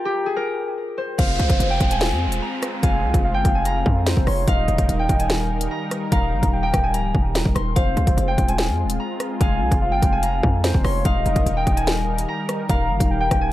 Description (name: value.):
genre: hip hop, drill.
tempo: 146 BPM.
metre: 4/4.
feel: half-time.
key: F minor.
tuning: A4 = 443 Hz.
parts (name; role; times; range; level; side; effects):
concert harp; melody; 0.0-13.5 s; F4 to C6; -25 LUFS; left 1 dB; low-pass filter, tape echo.
soft octave-layered synth lead; second line; 0.0-13.5 s; C5 to Bb5; -29 LUFS; right 1 dB; chorus, tape echo.
warm analog pad; sustained chords; 1.2-13.5 s; Eb3 to Bb4; -28 LUFS; left 1 dB; chorus.
hard-hitting 808-style bass; bass; 1.2-13.5 s; Db1 to F2; -22 LUFS; equal; none.
drill drum kit; drums; 1.2-13.4 s; crash cymbal, hi-hat, kick drum, rim click, snare drum; -21 LUFS; equal; none.
downlifter; sound effects; 1.2-4.5 s; none; -31 LUFS; equal; none.
room: light reverb.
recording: echo-heavy mix, lossy compression artefacts.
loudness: -18 LUFS.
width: side -15 dB against mid.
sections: 0.0-1.2 A section; 1.2-13.5 B section.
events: break 0.0-1.2.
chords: 0.0 Eb (rootless); 1.2 Fm; 4.5 Eb; 7.8 Fm; 11.1 Eb.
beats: 0.37 0.78 | 1.19 1.60 2.01 2.42 | 2.83 3.24 3.65 4.07 | 4.48 4.89 5.30 5.71 | 6.12 6.53 6.94 7.35 | 7.76 8.18 8.59 9.00 | 9.41 9.82 10.23 10.64 | 11.05 11.46 11.87 12.28 | 12.70 13.11 13.52.